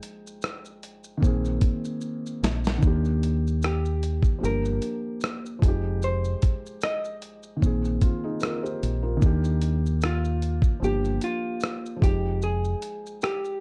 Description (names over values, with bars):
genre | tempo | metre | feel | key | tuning
lo-fi hip hop | 75 BPM | 4/4 | swing 56% on 16ths | F dorian | A4 = 442 Hz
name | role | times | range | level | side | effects
felt-muted upright piano | accompaniment | 0.0-13.6 s | Eb3 to G5 | -33 LUFS | equal | low-pass filter
dusty soul sampler-style drum kit | drums | 0.0-13.6 s | hi-hat, kick drum, rim click, shaker, snare drum | -26 LUFS | equal | none
deep dub fingered electric bass | bass | 1.2-12.7 s | F1 to Eb2 | -28 LUFS | equal | none
vintage hollow-body jazz guitar | melody | 3.7-13.6 s | F4 to Eb5 | -33 LUFS | equal | low-pass filter
room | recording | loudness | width
light reverb | cassette tape, faint mains hum | -26 LUFS | mono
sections
0.0-13.6 A section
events
break 0.0-2.8; drum fill 2.0-2.8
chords
0.0 Fm9; 1.2 Bb9sus4; 2.8 Ebmaj7; 4.4 Gm7; 5.6 Fm9; 7.6 Bb9sus4; 9.2 Ebmaj7; 10.8 Gm7; 12.0 Fm9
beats
0.42 1.22 2.02 | 2.82 3.62 4.42 5.22 | 6.02 6.82 7.62 8.42 | 9.22 10.02 10.82 11.62 | 12.42 13.22